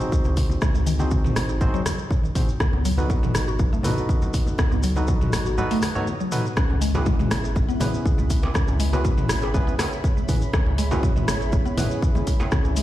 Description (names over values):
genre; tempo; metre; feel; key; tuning
afro house; 121 BPM; 4/4; straight; C# minor; A4 = 440 Hz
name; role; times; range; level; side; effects
barky tine electric piano; stabs; 0.0-12.8 s; B3 to C#5; -30 LUFS; right 1 dB; sidechain pumping, dub echo
maracas; percussion; 0.0-12.8 s; none; -40 LUFS; left 2 dB; none
woody FM bass; bass; 0.1-12.8 s; G#1 to C#2; -25 LUFS; equal; sidechain pumping
electronic kick drum; drums; 0.1-12.6 s; none; -22 LUFS; equal; none
congas; percussion; 0.2-12.7 s; none; -30 LUFS; left 1 dB; none
mallet-like synth pluck; arpeggios; 0.3-12.8 s; D#3 to G#4; -30 LUFS; left 1 dB; phaser, wide subtle chorus, sidechain pumping, dub echo
house drum kit; drums; 0.4-12.8 s; hi-hat, rim click, toms; -28 LUFS; equal; none
dark analog pad; sustained chords; 6.9-12.8 s; G#4 to B5; -34 LUFS; equal; chorus, sidechain pumping
darbuka; percussion; 6.9-12.5 s; none; -35 LUFS; right 3 dB; none
room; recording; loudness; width
light reverb; played on a big sound system in a bare room, large studio reverb; -20 LUFS; side -14 dB against mid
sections
0.0-12.8 A section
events
none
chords
0.0 G#7; 2.6 B7; 6.6 C#m7